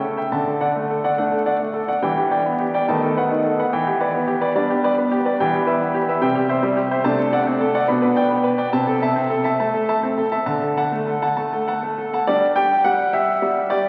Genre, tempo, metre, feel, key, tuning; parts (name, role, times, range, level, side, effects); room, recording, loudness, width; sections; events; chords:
classical-period piano sonatina; 70 BPM (dotted quarters); 6/8; rubato; G major from 5.4 s; A4 = 439 Hz
clear baby grand piano; solo; 0.0-13.9 s; B2 to B5; -20 LUFS; equal
wet church reverb, RT60 2.7 s; very old 78 rpm record, vinyl crackle; -20 LUFS; mono
0.0-12.3 A section; 12.3-13.9 B section
0.3 D; 2.0 Em7; 2.9 B7/D#; 3.7 Em7; 5.4 Em; 6.2 C; 7.0 D7/C; 7.9 G/B; 8.7 Am/C; 10.5 D; 12.3 G5